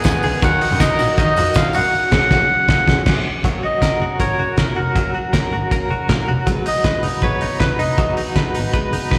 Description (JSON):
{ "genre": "jangly indie pop", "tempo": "159 BPM", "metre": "4/4", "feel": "straight", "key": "F# major", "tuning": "A4 = 440 Hz", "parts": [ { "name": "picked steel-string acoustic guitar", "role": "accompaniment", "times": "0.0-9.2 s", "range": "G#2 to B4", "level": "-29 LUFS", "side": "equal", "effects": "slapback echo" }, { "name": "string machine, violas", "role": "sustained chords", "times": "0.0-3.4 s", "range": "D#3 to A#4", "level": "-34 LUFS", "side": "equal", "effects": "none" }, { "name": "direct-recorded clean electric guitar", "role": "arpeggios", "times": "0.0-9.2 s", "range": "G#2 to B4", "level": "-25 LUFS", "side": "equal", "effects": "tremolo, slapback echo" }, { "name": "clear double bass", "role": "bass", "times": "0.0-9.2 s", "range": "E#1 to D#3", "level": "-26 LUFS", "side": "equal", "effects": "none" }, { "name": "cloth-damped thuddy drum kit", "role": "drums", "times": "0.0-9.2 s", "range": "crash cymbal, hi-hat, kick drum, ride cymbal, snare drum", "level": "-22 LUFS", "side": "equal", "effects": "none" }, { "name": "tambourine", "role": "percussion", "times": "0.0-1.8 s", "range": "none", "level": "-38 LUFS", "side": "equal", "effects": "none" }, { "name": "melodica", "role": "melody", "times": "0.1-8.1 s", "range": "A#4 to G#5", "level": "-21 LUFS", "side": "equal", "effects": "slapback echo" } ], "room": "light reverb, small room ambience", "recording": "live gig heard through the venue's PA, recital hall reverb", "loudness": "-17 LUFS", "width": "mono", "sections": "0.0-3.4 A section; 3.4-9.2 B section", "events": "band accent 1.9-3.4", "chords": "0.4 D#m; 1.9 F#add9; 3.4 F#; 6.5 B6", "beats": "0.05 | 0.42 0.80 1.18 1.56 | 1.93 2.31 2.69 3.06 | 3.44 3.82 4.20 4.58 | 4.96 5.33 5.71 6.09 | 6.47 6.85 7.22 7.60 | 7.98 8.36 8.73 9.11" }